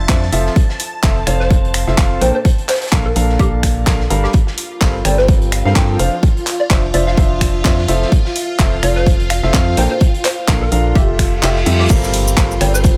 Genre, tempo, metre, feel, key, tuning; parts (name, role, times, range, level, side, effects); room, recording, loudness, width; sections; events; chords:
piano house; 127 BPM; 4/4; swing 56% on 16ths; G dorian; A4 = 440 Hz
string machine, violins; sustained chords; 0.0-13.0 s; F4 to A5; -28 LUFS; equal; ensemble chorus, sidechain pumping
warm baby grand piano; riff; 0.0-13.0 s; G2 to G5; -23 LUFS; equal; vintage 12-bit sampler grit, sidechain pumping
organ-like FM bass; bass; 0.0-13.0 s; F1 to G2; -20 LUFS; equal; sidechain pumping
electronic kick drum; drums; 0.1-12.9 s; -16 LUFS; equal
house drum kit; drums; 0.1-13.0 s; crash cymbal, finger snaps, handclaps, hi-hat, shaker; -24 LUFS; equal
raw garage drum kit; drums; 0.1-13.0 s; hi-hat, snare drum; -33 LUFS; equal
hollow square pluck; melody; 1.3-12.9 s; G4 to F5; -24 LUFS; equal; ensemble chorus, cassette tape, delay
reverse cymbal and impact; sound effects; 11.2-13.0 s; -27 LUFS; equal
digital ambience; -15 LUFS; mono
0.0-11.9 A section; 11.9-13.0 B section
reverse cymbal 11.2-11.9; kick drops out 11.4-11.9; drop 11.9-13.0; impact 11.9-13.0
0.3 Fmaj7; 2.2 Bbmaj7; 4.3 Gm11; 6.0 Dm9/F; 7.9 Fmaj7; 9.8 Bbmaj7; 11.0 Fmaj9; 11.9 Gm11